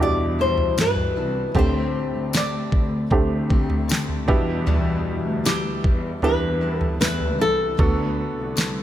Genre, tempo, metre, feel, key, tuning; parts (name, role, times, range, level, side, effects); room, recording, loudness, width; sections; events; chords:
pop ballad; 77 BPM; 4/4; straight; E minor; A4 = 440 Hz
flamenco guitar; melody; 0.0-8.8 s; G4 to D5; -25 LUFS; left 2 dB; tape echo
warm upright piano; accompaniment; 0.0-8.8 s; A2 to A4; -27 LUFS; right 2 dB
picked steel-string acoustic guitar; arpeggios; 0.0-8.8 s; E2 to G4; -30 LUFS; left 5 dB; tape echo
dark chamber cello section; bass; 0.0-8.8 s; C2 to G2; -27 LUFS; equal
smooth R&B drum kit; drums; 0.6-8.8 s; kick drum, snare drum, toms; -22 LUFS; equal
tambourine; percussion; 0.8-8.8 s; -33 LUFS; left 8 dB
studio reverb; -19 LUFS; side -12 dB against mid
0.0-8.8 A section
0.0 Em7; 1.6 D7sus4; 4.3 Em7; 7.8 Bm7